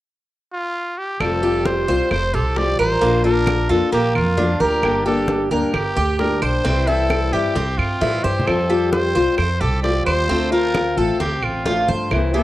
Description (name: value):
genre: latin, Cuban son and guajira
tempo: 132 BPM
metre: 4/4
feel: straight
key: F major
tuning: A4 = 441 Hz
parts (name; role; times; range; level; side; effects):
- growling trumpet; melody; 0.5-12.4 s; F4 to D5; -24 LUFS; right 1 dB; cassette tape
- fingerpicked steel-string acoustic guitar; accompaniment; 1.2-12.4 s; C3 to G4; -21 LUFS; left 3 dB; cassette tape
- upright bass; bass; 1.2-12.4 s; F1 to A2; -22 LUFS; right 1 dB; none
- bongos; percussion; 1.2-12.3 s; none; -30 LUFS; left 3 dB; none
- claves; percussion; 1.2-12.3 s; none; -28 LUFS; right 5 dB; none
- congas; percussion; 1.2-12.4 s; none; -28 LUFS; left 1 dB; none
- Cuban tres; arpeggios; 1.4-12.4 s; Bb3 to C5; -22 LUFS; right 2 dB; cassette tape
room: moderate spring reverb, RT60 2.0 s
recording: home recording on cassette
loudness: -16 LUFS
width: side -15 dB against mid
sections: 0.0-1.2 A section; 1.2-12.4 B section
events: drum fill 8.2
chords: 0.0 N.C.; 1.2 Fadd9; 3.0 Bb; 4.8 Gm; 6.6 C; 8.5 Fadd9; 10.3 Dm7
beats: 0.30 0.75 | 1.20 1.66 2.11 2.56 | 3.02 3.47 3.92 4.38 | 4.83 5.28 5.74 6.19 | 6.65 7.10 7.56 8.02 | 8.47 8.93 9.38 9.84 | 10.29 10.75 11.20 11.66 | 12.11